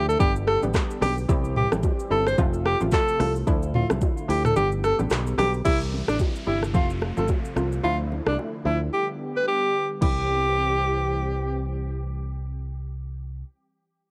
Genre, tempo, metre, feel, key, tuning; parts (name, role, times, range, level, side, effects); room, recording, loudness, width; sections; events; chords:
afrobeats; 110 BPM; 4/4; swing 58% on 16ths; C major; A4 = 443 Hz
edgy alto saxophone; melody; 0.0-11.6 s; D4 to C5; -27 LUFS; equal; cassette tape
hollow square pluck; accompaniment; 0.0-13.4 s; F3 to G4; -34 LUFS; equal; chorus, cassette tape
warm analog pad; sustained chords; 0.0-13.4 s; C3 to G4; -36 LUFS; equal; chorus, cassette tape
fingered electric bass; bass; 0.0-13.4 s; F1 to D2; -30 LUFS; equal
afro-pop drum kit; drums; 0.1-10.2 s; crash cymbal, handclaps, hi-hat, kick drum, rim click, shaker, toms; -28 LUFS; equal; cassette tape
congas and bongos; percussion; 0.2-10.3 s; -35 LUFS; equal
downlifter; sound effects; 5.7-10.0 s; -45 LUFS; equal
little or no reverb; home recording on cassette; -24 LUFS; mono
0.0-5.7 A section; 5.7-10.0 B section; 10.0-14.1 C section
kick muted 4.6-5.7; silent gap 8.9-10.0
0.2 G; 1.3 C; 2.4 F; 3.5 Dmadd9; 4.6 G; 5.7 C; 6.7 F; 7.8 Dmadd9; 8.9 G; 10.0 C